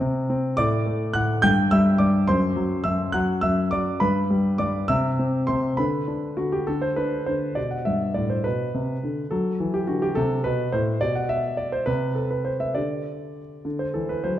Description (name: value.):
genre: classical-period piano sonatina.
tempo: 69 BPM (dotted quarters).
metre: 6/8.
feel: straight.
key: G major.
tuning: A4 = 440 Hz.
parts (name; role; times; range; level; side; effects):
warm concert grand piano; solo; 0.0-14.4 s; F#2 to G6; -21 LUFS; equal; none.
room: wet recital hall reverb, RT60 1.6 s.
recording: dark, warm production.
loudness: -21 LUFS.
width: side -12 dB against mid.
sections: 0.0-7.6 A section; 7.6-14.4 B section.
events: none.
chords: 0.0 Cm; 0.6 D/A; 1.4 G5; 2.3 D7/F#; 4.0 G; 4.9 C; 5.8 D6; 7.6 G; 9.3 F#dim; 11.0 G/B; 11.9 N.C.; 12.8 G5/D; 13.7 D.